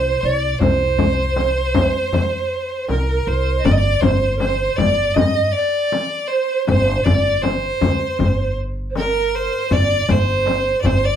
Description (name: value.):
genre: Arabic maqam ensemble.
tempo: 79 BPM.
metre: 4/4.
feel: straight.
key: G maqam bayati from 3.6 s.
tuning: A4 = 439 Hz.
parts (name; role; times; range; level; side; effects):
bright violin; melody; 0.0-11.2 s; Bb4 to Eb5; -21 LUFS; equal; none.
reedy pan flute; second line; 0.0-11.2 s; Bb4 to Eb5; -22 LUFS; right 4 dB; none.
upright bass; bass; 0.0-11.2 s; G1 to G2; -21 LUFS; equal; none.
darbuka; percussion; 0.2-11.0 s; none; -24 LUFS; equal; none.
frame drum; percussion; 0.6-11.0 s; none; -21 LUFS; left 6 dB; none.
room: light reverb.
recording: none.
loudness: -16 LUFS.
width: side -9 dB against mid.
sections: 0.0-3.6 A section; 3.6-11.2 B section.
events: none.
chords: none.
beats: | 0.60 1.36 2.12 2.89 | 3.65 4.41 5.17 5.92 | 6.68 7.44 8.20 8.95 | 9.71 10.47.